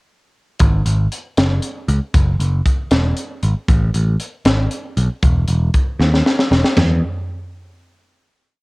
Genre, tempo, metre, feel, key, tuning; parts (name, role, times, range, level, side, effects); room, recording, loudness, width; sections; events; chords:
math rock and midwest emo; 78 BPM (dotted quarters); 6/8; straight; A4 = 440 Hz
picked electric bass; bass; 0.6-7.0 s; E1 to E2; -16 LUFS; equal
crisp fusion drum kit; drums; 0.6-6.9 s; crash cymbal, hi-hat, kick drum, snare drum, toms; -17 LUFS; equal; cassette tape
little or no reverb; home recording on cassette; -14 LUFS; side -25 dB against mid
0.6-6.8 A section; 6.8-8.3 final note
drum fill 6.0-6.8